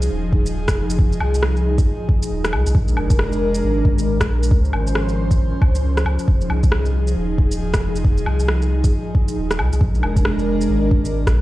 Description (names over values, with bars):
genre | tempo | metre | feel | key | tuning
future garage | 136 BPM | 4/4 | swing 61% on 16ths | F minor | A4 = 441 Hz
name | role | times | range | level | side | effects
airy breathy pad | sustained chords | 0.0-11.4 s | F3 to C5 | -23 LUFS | equal | chorus, sidechain pumping
warm sub bass | bass | 0.0-11.4 s | Eb1 to Db2 | -20 LUFS | equal | none
electronic shaker, rim click and woodblock | drums | 0.0-11.3 s | none | -25 LUFS | equal | overdrive
electronic kick drum | drums | 0.3-11.3 s | none | -17 LUFS | equal | overdrive
room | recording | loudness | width
light reverb | played on a big sound system in a bare room, stone room reverb | -16 LUFS | side -16 dB against mid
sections
0.0-11.4 A section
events
none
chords
0.0 Fm7; 2.8 Bb7; 4.5 Dbmaj7; 6.3 Fm7; 9.8 Bb7